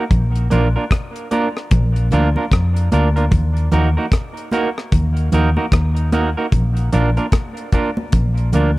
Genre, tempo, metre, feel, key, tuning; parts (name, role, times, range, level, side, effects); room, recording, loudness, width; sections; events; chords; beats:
roots reggae; 75 BPM; 4/4; swing 61% on 16ths; A4 = 440 Hz
semi-hollow electric guitar; accompaniment; 0.0-8.7 s; Bb3 to Bb4; -21 LUFS; right 2 dB; tape echo
vintage muted fingered electric bass; bass; 0.1-8.8 s; Bb1 to F2; -16 LUFS; equal
deep reggae drum kit; drums; 0.1-8.8 s; hi-hat, kick drum, rim click; -17 LUFS; equal
congas; percussion; 0.1-8.8 s; -25 LUFS; right 2 dB
light reverb, small room ambience; echo-heavy mix; -15 LUFS; side -19 dB against mid
0.0-8.8 A section
0.1 Bb; 3.3 Ebm; 6.5 Bb
| 0.11 0.91 1.71 2.51 | 3.32 4.12 4.92 5.72 | 6.53 7.33 8.13